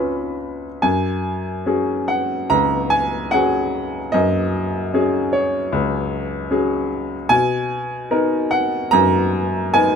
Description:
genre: classical, lyrical solo piano.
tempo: 66-76 BPM.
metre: 4/4.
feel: rubato.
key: F# major.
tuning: A4 = 442 Hz.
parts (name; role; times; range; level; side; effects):
clear baby grand piano; solo; 0.0-10.0 s; C#2 to B5; -17 LUFS; equal; none.
room: light reverb.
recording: close, detailed microphones.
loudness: -17 LUFS.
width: side -6 dB against mid.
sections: 0.8-10.0 A section.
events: none.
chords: 0.0 C#7; 0.8 F#sus2; 7.3 Bmaj7.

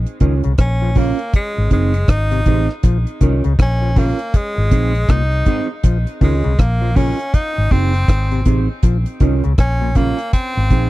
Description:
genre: roots reggae.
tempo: 80 BPM.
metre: 4/4.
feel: swing 61% on 16ths.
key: Bb minor.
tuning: A4 = 438 Hz.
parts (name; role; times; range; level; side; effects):
vintage muted fingered electric bass; bass; 0.0-10.9 s; Gb1 to Db2; -16 LUFS; equal; none.
deep reggae drum kit; drums; 0.1-10.9 s; hi-hat, kick drum, rim click; -14 LUFS; equal; none.
mellow electric guitar; accompaniment; 0.2-10.9 s; C4 to Db5; -23 LUFS; right 6 dB; wide subtle chorus, tape echo.
overdriven clav; arpeggios; 0.2-10.1 s; Ab2 to F3; -25 LUFS; left 7 dB; auto-wah.
edgy tenor saxophone; melody; 0.6-10.9 s; Ab3 to Eb4; -23 LUFS; equal; tape echo.
room: little or no reverb.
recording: dry, close 1970s-style studio recording.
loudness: -14 LUFS.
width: side -17 dB against mid.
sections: 0.0-10.9 A section.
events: none.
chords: 0.0 Bbm; 1.3 Ab; 2.8 Bbm; 4.3 Ab; 5.8 Bbm; 7.3 Ab; 8.8 Bbm; 10.3 Ab.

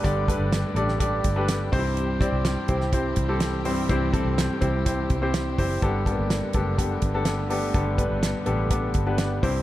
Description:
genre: piano-driven pop.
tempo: 125 BPM.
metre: 4/4.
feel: straight.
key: G major.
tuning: A4 = 440 Hz.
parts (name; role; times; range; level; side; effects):
warm grand piano; accompaniment; 0.0-9.6 s; G2 to D5; -25 LUFS; left 1 dB; none.
warm studio string section; sustained chords; 0.0-9.6 s; D3 to G4; -34 LUFS; right 1 dB; none.
vintage muted fingered electric bass; bass; 0.0-9.6 s; F#1 to C2; -27 LUFS; equal; none.
damped 70s drum kit; drums; 0.0-9.5 s; hi-hat, kick drum, snare drum; -26 LUFS; right 1 dB; none.
room: light reverb, small room ambience.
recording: none.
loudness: -22 LUFS.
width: side -14 dB against mid.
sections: 0.0-9.6 A section.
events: none.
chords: 0.0 Gadd9; 1.7 C; 5.8 Gadd9.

